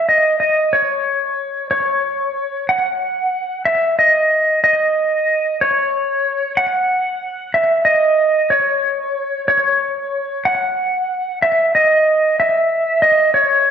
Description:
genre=rock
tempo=62 BPM (dotted quarters)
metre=6/8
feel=straight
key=unclear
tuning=A4 = 440 Hz
part: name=clean lap steel guitar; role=melody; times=0.0-13.7 s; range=C#5 to F#5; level=-14 LUFS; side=equal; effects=slapback echo
room=wet lush hall reverb, RT60 1.7 s, digital ambience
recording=big arena sound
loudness=-14 LUFS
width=side -8 dB against mid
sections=0.0-13.7 A section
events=none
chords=none

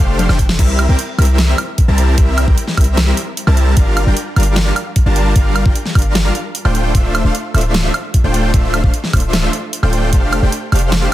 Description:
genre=future bass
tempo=151 BPM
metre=4/4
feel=half-time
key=unclear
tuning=A4 = 441 Hz
part: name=dense compressed supersaw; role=riff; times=0.0-11.1 s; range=G3 to A5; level=-18 LUFS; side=equal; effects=sidechain pumping, digital delay
part: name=warm 808-style bass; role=bass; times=0.0-11.1 s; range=D1 to C2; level=-14 LUFS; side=equal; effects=sidechain pumping
part: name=dubstep drum kit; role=drums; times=0.2-11.0 s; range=crash cymbal, hi-hat, snare drum, toms, woodblock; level=-19 LUFS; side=right 1 dB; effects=overdrive
part: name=electronic kick drum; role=drums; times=0.4-10.2 s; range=none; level=-13 LUFS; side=equal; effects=none
room=little or no reverb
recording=dense, heavily limited modern master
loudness=-12 LUFS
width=side -14 dB against mid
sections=0.6-11.1 A section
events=drum fill 0.2-0.6; drop 0.6-11.1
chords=0.0 F69; 0.6 C7; 3.8 Gm7; 6.7 Dm9; 10.1 F69

